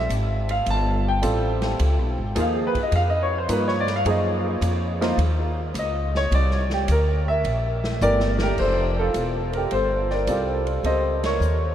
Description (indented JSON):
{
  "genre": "jazz piano trio",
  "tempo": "106 BPM",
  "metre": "4/4",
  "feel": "swing 69% on 8ths",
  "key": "unclear",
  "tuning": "A4 = 440 Hz",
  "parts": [
    { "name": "warm grand piano", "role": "melody", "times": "0.0-11.7 s", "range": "E3 to A5", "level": "-23 LUFS", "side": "equal", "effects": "wide subtle chorus, diffuse ambient delay" },
    { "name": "upright bass", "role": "bass", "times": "0.0-11.7 s", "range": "E1 to G2", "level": "-23 LUFS", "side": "equal", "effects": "none" },
    { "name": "swinging big-band drum kit", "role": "drums", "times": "0.1-11.6 s", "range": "crash cymbal, hi-hat, kick drum, ride cymbal, snare drum", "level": "-34 LUFS", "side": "equal", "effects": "none" }
  ],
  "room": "moderate huge ambient reverb, RT60 8.3 s",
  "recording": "dreamy mix soaked in reverb",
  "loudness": "-20 LUFS",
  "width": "side -10 dB against mid",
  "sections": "0.0-8.6 A section; 8.6-11.7 B section",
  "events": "grand piano solo 0.0-8.6; drum fill 8.0-8.6; band accent 11.1",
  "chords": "0.0 N.C.; 1.8 Db7; 4.1 Gb69; 6.3 C13; 8.6 Fmaj9; 10.8 A7alt",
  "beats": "0.10 0.67 1.23 | 1.80 2.36 2.93 3.49 | 4.06 4.62 5.19 5.75 | 6.32 6.88 7.45 8.01 | 8.58 9.14 9.71 10.28 | 10.84 11.41"
}